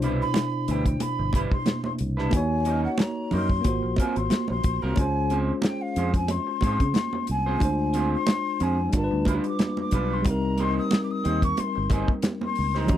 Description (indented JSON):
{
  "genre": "lush 1970s-style soul",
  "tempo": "91 BPM",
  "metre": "4/4",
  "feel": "swing 54% on 16ths",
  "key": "unclear",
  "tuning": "A4 = 445 Hz",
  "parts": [
    { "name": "tine electric piano", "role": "accompaniment", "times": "0.0-13.0 s", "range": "B2 to Db5", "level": "-28 LUFS", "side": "left 1 dB", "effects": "medium stereo tremolo" },
    { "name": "electric guitar through a small old amp", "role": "riff", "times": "0.0-12.9 s", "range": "Gb3 to C5", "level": "-32 LUFS", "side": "right 3 dB", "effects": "none" },
    { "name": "fingered electric bass", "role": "bass", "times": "0.0-13.0 s", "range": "G1 to Db3", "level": "-27 LUFS", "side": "equal", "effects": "none" },
    { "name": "damped 70s drum kit", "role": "drums", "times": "0.0-13.0 s", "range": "hi-hat, kick drum, snare drum", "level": "-24 LUFS", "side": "equal", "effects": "none" },
    { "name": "breathy mellow jazz flute", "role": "melody", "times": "0.2-13.0 s", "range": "F5 to Eb6", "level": "-30 LUFS", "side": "left 2 dB", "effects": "none" },
    { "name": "congas", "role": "percussion", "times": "0.3-13.0 s", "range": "none", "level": "-31 LUFS", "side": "right 4 dB", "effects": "none" },
    { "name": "vibraphone with hard mallets", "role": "texture", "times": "5.0-6.1 s", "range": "Ab4", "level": "-40 LUFS", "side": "left 2 dB", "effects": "none" }
  ],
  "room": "little or no reverb",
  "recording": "dry, close 1970s-style studio recording",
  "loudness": "-22 LUFS",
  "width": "side -11 dB against mid",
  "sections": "0.0-13.0 A section",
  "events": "none",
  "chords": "0.0 Cmaj9; 2.3 Ebm7; 3.7 Ab13; 5.0 Dbmaj7; 7.6 Dm7b5; 8.9 G7; 10.3 Cm7"
}